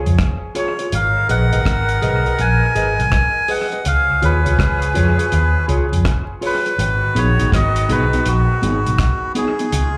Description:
roots reggae; 82 BPM; 4/4; swing 64% on 16ths; G# dorian; A4 = 444 Hz
clear horn section; second line; 0.0-10.0 s; C#3 to A#4; -30 LUFS; equal; tape echo, plate reverb, slapback echo
vintage muted fingered electric bass; bass; 0.0-9.9 s; G#1 to E#2; -20 LUFS; equal
cloth-damped thuddy drum kit; drums; 0.1-9.9 s; hi-hat, kick drum, rim click; -24 LUFS; equal; dub echo
mellow electric guitar; accompaniment; 0.5-9.7 s; B3 to D#5; -27 LUFS; equal; spring reverb, tape echo, plate reverb, slapback echo
melodica; melody; 0.6-10.0 s; F#4 to G#5; -22 LUFS; equal; tape echo, plate reverb
light reverb; live gig heard through the venue's PA, club reverb, vinyl crackle; -17 LUFS; mono
0.0-10.0 A section
0.0 C#; 0.9 G#m; 3.9 C#; 6.8 G#m
0.19 | 0.92 1.66 2.39 3.12 | 3.86 4.59 5.32 6.06 | 6.79 7.52 8.26 8.99 | 9.72

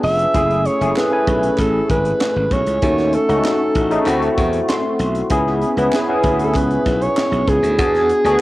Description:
polished 1980s jazz-funk pop; 97 BPM; 4/4; straight; A4 = 440 Hz
breathy alto saxophone; melody; 0.0-8.4 s; G#4 to E5; -19 LUFS; right 1 dB; cassette tape
barky tine electric piano; accompaniment; 0.0-8.4 s; A3 to C6; -18 LUFS; left 1 dB; overdrive, analog chorus
glassy slap bass; bass; 0.0-8.4 s; E#1 to E2; -22 LUFS; equal
crisp fusion drum kit; drums; 0.0-8.4 s; hi-hat, kick drum, snare drum; -24 LUFS; equal; cassette tape
group handclap; percussion; 1.0-7.3 s; -33 LUFS; right 3 dB
light reverb, small room ambience; home recording on cassette; -14 LUFS; side -17 dB against mid
0.0-8.4 A section
tine electric piano fill 4.4-5.3
0.3 F#m9; 2.8 D#m7b5; 4.1 D9; 5.3 C#m7; 7.8 E7
| 0.34 0.96 1.58 2.21 | 2.83 3.45 4.07 4.69 | 5.31 5.92 6.54 7.16 | 7.78 8.40

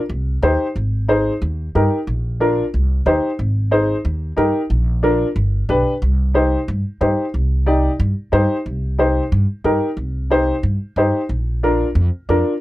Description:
latin, cumbia; 182 BPM; 4/4; straight; C minor; A4 = 441 Hz
upright bass; bass; 0.1-12.4 s; G1 to G2; -18 LUFS; equal
dark upright piano; accompaniment; 0.4-12.5 s; D4 to D5; -17 LUFS; left 1 dB
little or no reverb; dry, close 1970s-style studio recording; -16 LUFS; side -16 dB against mid
0.0-6.0 A section; 6.0-12.6 B section
0.1 Cm; 0.8 Ab; 1.4 Eb; 2.1 Bb; 2.7 Cm; 3.4 Ab; 4.0 Eb; 4.7 Bb; 5.4 G; 6.0 Cm; 11.3 Bb
0.10 0.42 | 0.75 1.08 1.41 1.74 | 2.07 2.40 2.73 3.06 | 3.38 3.71 4.04 4.37 | 4.70 5.03 5.36 5.69 | 6.02 6.35 6.68 7.01 | 7.34 7.67 8.00 8.33 | 8.66 8.99 9.32 9.65 | 9.98 10.31 10.64 10.97 | 11.30 11.63 11.96 12.29

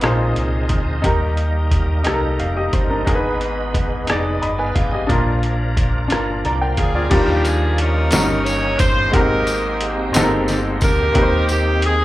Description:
slow gospel; 59 BPM (dotted quarters); 6/8; straight; Eb major; A4 = 439 Hz
bright upright piano; accompaniment; 0.0-12.0 s; G2 to Cb6; -20 LUFS; left 1 dB; slapback echo
bright tonewheel organ; sustained chords; 0.0-12.0 s; Eb3 to Ab5; -26 LUFS; right 2 dB; fast rotary speaker, overdrive, chorus vibrato
fingered electric bass; bass; 0.0-12.0 s; F1 to Eb2; -21 LUFS; equal
trip hop sampler-style drum kit; drums; 0.0-12.0 s; crash cymbal, hi-hat, kick drum, rim click, snare drum; -20 LUFS; equal; overdrive
clear saxophone section; melody; 6.8-12.0 s; Bb3 to Db5; -20 LUFS; equal
tambourine; percussion; 7.5-11.8 s; -29 LUFS; left 1 dB
light reverb; live gig heard through the venue's PA, club reverb; -16 LUFS; side -16 dB against mid
0.0-7.1 A section; 7.1-12.0 B section
0.0 Bb9sus4; 1.0 Eb; 3.1 Abm; 5.1 Bb; 7.1 Ebmaj9; 8.1 Eb7/G; 9.1 Abmaj9; 11.2 Eb6
0.03 | 1.04 2.05 | 3.07 4.08 | 5.09 6.10 | 7.11 8.12 | 9.13 10.14 | 11.15

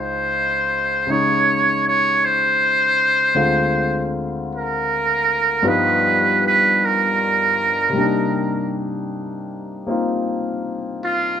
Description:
jazz; 52 BPM; 4/4; swing 68% on 8ths; A4 = 440 Hz
trumpet with metal mute; melody; 0.0-11.4 s; F4 to Db5; -17 LUFS; right 2 dB
warm grand piano; accompaniment; 0.0-11.4 s; Db2 to F4; -22 LUFS; left 2 dB
light reverb; -16 LUFS; side -8 dB against mid
0.0-11.4 A section
muted trumpet solo 0.0-11.4
0.0 Dbmaj9; 3.3 Dm7b5; 5.6 G7alt; 7.9 Cm9
1.05 2.20 | 3.34 4.49 5.63 6.78 | 7.94 9.09 10.23 11.38

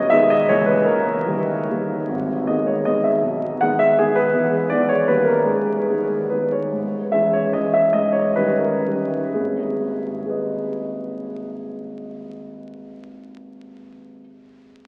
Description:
classical, romantic triple-time dance for piano with dotted rhythms; 114-171 BPM; 3/4; rubato; G# minor; A4 = 440 Hz
dark concert grand piano; solo; 0.0-14.2 s; G#1 to F#5; -21 LUFS; equal
wet cathedral reverb, RT60 6.3 s; very old 78 rpm record, vinyl crackle; -20 LUFS; mono
0.0-6.7 A section; 6.7-9.3 B section; 9.3-12.1 C section
slowing down 6.1-9.3
0.5 A#dim/C#; 0.9 D#; 2.1 G#m; 3.2 G#m/B; 4.3 E; 4.7 E7; 5.1 D#7; 5.5 G#m; 6.7 C#m/G#; 7.9 D#7/G#; 9.3 G#m
0.11 0.49 | 0.86 1.26 1.69 | 2.09 2.48 2.86 | 3.23 3.60 3.98 | 4.33 4.70 5.08 | 5.47 5.89 6.32 | 6.74 7.14 7.54 | 7.93 8.36 8.84 | 9.34 9.79 10.25 | 10.69 11.16 11.66

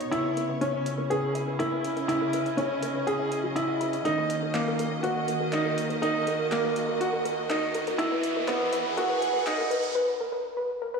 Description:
piano and strings electronica; 122 BPM; 4/4; straight; A4 = 440 Hz
rich studio string section; sustained chords; 0.0-10.0 s; B2 to F#5; -31 LUFS; right 1 dB
deep house drum kit; drums; 0.0-9.9 s; handclaps, hi-hat; -39 LUFS; equal
soft round pluck; arpeggios; 0.1-11.0 s; F#4 to B5; -32 LUFS; left 1 dB; chorus, analog delay
bright upright piano; riff; 0.1-9.7 s; A#3 to G#4; -28 LUFS; right 1 dB; analog delay
riser; sound effects; 6.7-10.0 s; -39 LUFS; right 1 dB
wet plate reverb, RT60 2.3 s; dreamy mix soaked in reverb, high-pass filter, studio ambience, faint mains hum; -25 LUFS; side -5 dB against mid
0.0-11.0 A section
build-up 0.0-11.0; filter sweep on synth arpeggio sound 0.0-11.0; filter sweep 0.0-11.0; riser 6.7-10.0; break 10.0-11.0
0.1 C#madd9; 4.1 D#m; 8.0 Eadd9
| 0.13 0.62 1.11 1.60 | 2.09 2.59 3.08 3.57 | 4.06 4.55 5.04 5.54 | 6.03 6.52 7.01 7.50 | 8.00 8.49 8.98 9.47 | 9.96 10.46 10.95

